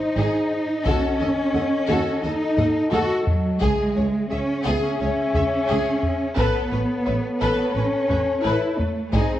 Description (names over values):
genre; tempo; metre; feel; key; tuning
cinematic, hybrid orchestral and electronic film score; 87 BPM; 4/4; straight; unclear; A4 = 441 Hz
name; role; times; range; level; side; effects
mellow French horn section; sustained chords; 0.0-9.4 s; G#4 to E5; -27 LUFS; left 5 dB; none
dark symphonic cello section; bass; 0.0-9.4 s; F#3 to F#4; -24 LUFS; right 1 dB; none
warm symphonic violin section; melody; 0.2-9.4 s; G#4 to F#5; -33 LUFS; left 3 dB; none
warm symphonic violin section; second line; 0.2-9.4 s; D#4 to E5; -30 LUFS; left 2 dB; none
warm symphonic viola section; accompaniment; 0.2-9.4 s; G#4 to B4; -29 LUFS; equal; none
rich studio double bass section; bass; 0.2-9.2 s; G#1 to D#2; -27 LUFS; right 2 dB; none
solo taiko drums; drums; 0.9-9.4 s; none; -25 LUFS; equal; none
room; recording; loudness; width
moderate scoring stage reverb, RT60 1.9 s; worn, warbling old tape, cassette tape, warbly pitch drift; -19 LUFS; side -12 dB against mid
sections
0.0-9.4 A section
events
drum fill 2.6-3.6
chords
0.0 G#; 0.9 D#dim; 3.6 C#m; 6.4 Aadd9